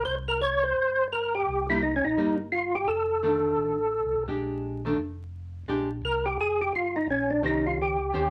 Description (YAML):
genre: soul jazz organ trio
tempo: 171 BPM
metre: 4/4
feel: swing 64% on 8ths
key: unclear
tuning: A4 = 441 Hz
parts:
  - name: percussive tonewheel organ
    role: melody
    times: 0.0-8.3 s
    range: Db4 to Db5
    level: -27 LUFS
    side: equal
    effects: slow rotary speaker, chorus vibrato
  - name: mellow tonewheel organ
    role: bass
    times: 0.0-8.3 s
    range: F1 to Eb2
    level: -40 LUFS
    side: equal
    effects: slow rotary speaker
  - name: archtop guitar, miked and amplified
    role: accompaniment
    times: 1.7-8.3 s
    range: Eb3 to C5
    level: -31 LUFS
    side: equal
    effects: none
room: moderate studio reverb, RT60 0.5 s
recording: vinyl crackle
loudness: -27 LUFS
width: mono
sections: 0.0-5.7 A section; 5.7-8.3 B section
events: tonewheel organ solo 5.7-8.3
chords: 0.1 Cm7; 2.9 F6; 4.3 Bb6; 5.0 N.C.; 5.7 Bb13; 7.1 Eb6